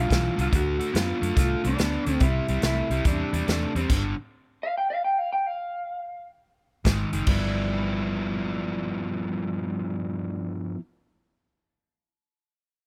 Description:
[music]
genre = electric blues shuffle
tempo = 142 BPM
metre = 4/4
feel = swing 66% on 8ths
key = G mixolydian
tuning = A4 = 440 Hz
[part]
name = electric guitar through a small old amp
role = melody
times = 0.0-10.5 s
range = G3 to G5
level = -31 LUFS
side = equal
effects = lush chorus
[part]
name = overdriven electric guitar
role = riff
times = 0.0-4.1, 6.8-10.8 s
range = G2 to E4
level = -32 LUFS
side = equal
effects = none
[part]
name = vintage muted fingered electric bass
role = bass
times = 0.0-4.1, 6.9-10.5 s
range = F#1 to F#2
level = -31 LUFS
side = equal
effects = none
[part]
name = natural country drum kit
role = drums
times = 0.1-4.0, 6.8-7.4 s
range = crash cymbal, hi-hat, kick drum, snare drum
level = -28 LUFS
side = equal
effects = none
[sound]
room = light reverb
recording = none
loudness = -26 LUFS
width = mono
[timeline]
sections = 0.0-7.3 A section; 7.3-10.6 B section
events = stop 3.9-6.8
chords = 0.0 G7; 0.5 D7; 2.2 Cadd9; 3.9 G5; 6.8 Ab5; 7.3 G6

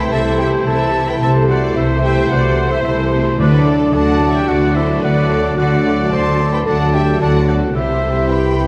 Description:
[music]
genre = cinematic, heroic adventure film score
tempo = 110 BPM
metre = 4/4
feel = straight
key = D mixolydian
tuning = A4 = 440 Hz
[part]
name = clear symphonic violin section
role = melody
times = 0.0-8.7 s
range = A4 to A5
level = -30 LUFS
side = equal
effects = none
[part]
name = bright concert flute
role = second line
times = 0.0-8.7 s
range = D5 to C6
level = -26 LUFS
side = equal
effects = none
[part]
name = dark clarinet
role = second line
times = 0.0-8.7 s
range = D4 to C5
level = -26 LUFS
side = equal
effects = none
[part]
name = rich symphonic violin section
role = second line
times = 0.0-8.7 s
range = A3 to A4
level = -30 LUFS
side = equal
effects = none
[part]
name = warm oboe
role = second line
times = 0.0-8.7 s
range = D5 to C6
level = -30 LUFS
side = equal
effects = none
[part]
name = clear symphonic viola section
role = accompaniment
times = 0.0-8.7 s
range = E4 to C5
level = -29 LUFS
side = equal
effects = none
[part]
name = warm French horn section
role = sustained chords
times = 0.0-8.7 s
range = A3 to A4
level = -28 LUFS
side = equal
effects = none
[part]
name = warm trombone section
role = sustained chords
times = 0.0-8.7 s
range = G2 to G3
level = -28 LUFS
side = equal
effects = none
[part]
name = concert harp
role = arpeggios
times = 0.0-8.7 s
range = C3 to E5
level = -27 LUFS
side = equal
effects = none
[part]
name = clear trumpet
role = stabs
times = 0.0-8.7 s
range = C5 to D5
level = -26 LUFS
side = equal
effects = none
[part]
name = clear symphonic double bass section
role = bass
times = 0.0-8.7 s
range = C2 to D2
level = -21 LUFS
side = equal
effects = none
[part]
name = rich symphonic cello section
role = bass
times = 0.0-8.7 s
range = C3 to D3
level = -22 LUFS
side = equal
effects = none
[part]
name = timpani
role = percussion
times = 3.4-4.2 s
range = D3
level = -21 LUFS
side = equal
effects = none
[sound]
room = wet recital hall reverb, RT60 1.6 s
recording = none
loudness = -15 LUFS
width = mono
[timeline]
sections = 0.0-8.7 A section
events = none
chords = 0.0 Am/C; 3.4 D; 7.8 C

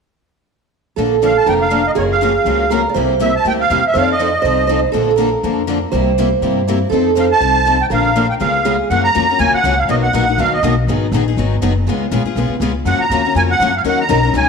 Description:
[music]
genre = acoustic string swing (jazz manouche)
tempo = 242 BPM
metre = 4/4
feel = swing 55% on 8ths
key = Bb major, F# major from 8.9 s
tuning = A4 = 437 Hz
[part]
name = picked steel-string acoustic guitar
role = second line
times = 1.0-8.9 s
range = Ab4 to D5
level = -18 LUFS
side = right 8 dB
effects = none
[part]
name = picked steel-string acoustic guitar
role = accompaniment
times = 1.0-14.5 s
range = B2 to Bb4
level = -19 LUFS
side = left 12 dB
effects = none
[part]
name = picked steel-string acoustic guitar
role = accompaniment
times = 1.0-14.5 s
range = B2 to Bb4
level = -24 LUFS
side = right 7 dB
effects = none
[part]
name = upright bass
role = bass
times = 1.0-14.5 s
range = F1 to G2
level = -20 LUFS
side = left 2 dB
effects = none
[part]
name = musette accordion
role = melody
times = 1.2-4.8, 7.2-10.8, 12.9-14.5 s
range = Db5 to A#5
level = -15 LUFS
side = right 2 dB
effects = none
[sound]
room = wet echo chamber reverb, RT60 1.5 s, small room ambience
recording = 1960s-style stereo with parts hard left and right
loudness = -12 LUFS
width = side -5 dB against mid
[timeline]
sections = 1.0-8.9 A section; 8.9-14.5 B section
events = none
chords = 1.0 Bbmaj7; 2.0 Gbmaj7; 3.0 C7; 3.9 F7; 4.9 Bbmaj7; 5.9 C7; 6.9 F7; 7.9 Bb; 8.4 Db7; 8.9 F#maj7; 9.9 Bmaj7; 10.9 G#m7; 11.9 C#7; 12.9 F#maj7; 13.8 D#m7

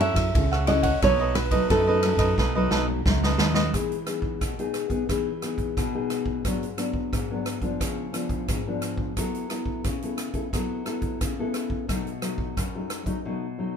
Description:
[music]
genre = samba and choro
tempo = 88 BPM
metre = 4/4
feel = straight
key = E major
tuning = A4 = 440 Hz
[part]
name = nylon-string guitar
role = melody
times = 0.0-2.3 s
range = A4 to E5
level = -24 LUFS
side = right 2 dB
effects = none
[part]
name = cavaquinho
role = accompaniment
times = 0.0-3.7 s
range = D#4 to F#5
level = -28 LUFS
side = right 5 dB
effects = none
[part]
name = nylon-string guitar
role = accompaniment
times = 0.0-13.8 s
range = F#2 to A4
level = -28 LUFS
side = left 3 dB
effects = none
[part]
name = fingered electric bass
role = bass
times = 0.0-3.7 s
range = B1 to F#2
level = -26 LUFS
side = equal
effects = none
[part]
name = swinging big-band drum kit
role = drums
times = 0.0-13.2 s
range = hi-hat, kick drum, ride cymbal, rim click, snare drum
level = -28 LUFS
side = equal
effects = none
[sound]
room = light reverb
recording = minimal, uncompressed stereo recording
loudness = -23 LUFS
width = side -7 dB against mid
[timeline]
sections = 0.0-3.7 A section; 3.7-13.8 B section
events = nylon-string guitar solo 0.0-3.7; drum fill 2.4-3.7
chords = 0.0 F#m7; 1.0 B7; 3.7 Emaj7; 6.4 G#m7b5; 7.8 C#7b9; 9.2 F#m7; 11.9 B7

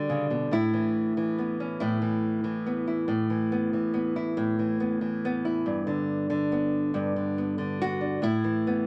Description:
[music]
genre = folk, solo fingerstyle acoustic guitar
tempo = 47 BPM (dotted quarters)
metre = 6/8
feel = straight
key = unclear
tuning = A4 = 441 Hz
[part]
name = nylon-string guitar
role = solo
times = 0.0-8.9 s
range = G2 to F#4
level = -28 LUFS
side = equal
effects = none
[sound]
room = moderate studio reverb, RT60 0.5 s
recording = none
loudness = -28 LUFS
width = mono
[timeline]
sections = 0.0-8.9 A section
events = none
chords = 0.0 G; 0.5 Aadd9; 5.7 G; 8.2 Asus2

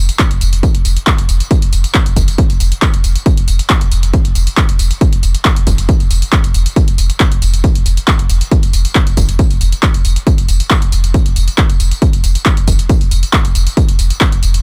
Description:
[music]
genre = driving peak-time techno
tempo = 137 BPM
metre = 4/4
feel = straight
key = unclear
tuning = A4 = 440 Hz
[part]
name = saturated sub bass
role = bass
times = 0.0-14.6 s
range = F1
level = -16 LUFS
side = equal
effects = overdrive, sidechain pumping, low-pass filter
[part]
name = punchy analog drum machine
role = drums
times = 0.1-14.6 s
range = handclaps, hi-hat, tambourine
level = -21 LUFS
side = equal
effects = sidechain pumping on hats, sidechain pumping on perc
[part]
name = electronic kick drum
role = drums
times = 0.2-14.3 s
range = none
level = -15 LUFS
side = equal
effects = none
[sound]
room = little or no reverb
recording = none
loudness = -12 LUFS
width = mono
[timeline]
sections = 0.0-14.6 A section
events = none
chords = none

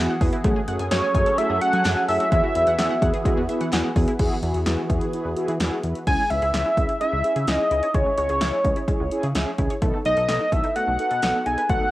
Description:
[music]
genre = synth-pop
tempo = 128 BPM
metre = 4/4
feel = straight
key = E major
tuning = A4 = 440 Hz
[part]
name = mellow synth brass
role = accompaniment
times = 0.0-11.8 s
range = A3 to B4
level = -28 LUFS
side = equal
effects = chorus, cassette tape, plate reverb
[part]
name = phased analog pad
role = sustained chords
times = 0.0-6.1 s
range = E3 to A4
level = -30 LUFS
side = equal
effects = phaser, chorus, cassette tape, plate reverb
[part]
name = wide unison pluck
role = arpeggios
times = 0.0-11.9 s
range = G#3 to G#5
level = -34 LUFS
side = equal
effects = cassette tape, tape echo, plate reverb
[part]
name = chorused synth bass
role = bass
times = 0.0-11.8 s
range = B1 to F#3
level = -27 LUFS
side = equal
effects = none
[part]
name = punchy analog drum machine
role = drums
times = 0.2-11.8 s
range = crash cymbal, handclaps, hi-hat, kick drum, snare drum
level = -24 LUFS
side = equal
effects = cassette tape
[part]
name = wide unison lead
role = melody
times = 0.9-11.9 s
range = C#5 to G#5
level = -22 LUFS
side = equal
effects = cassette tape, tape echo, plate reverb
[sound]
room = moderate studio reverb, RT60 0.6 s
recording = home recording on cassette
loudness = -19 LUFS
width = side -16 dB against mid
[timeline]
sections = 0.0-4.2 A section; 4.2-6.1 B section; 6.1-11.9 C section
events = none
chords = 0.4 F#madd9; 2.3 Eadd9; 6.1 C#m; 9.8 B7

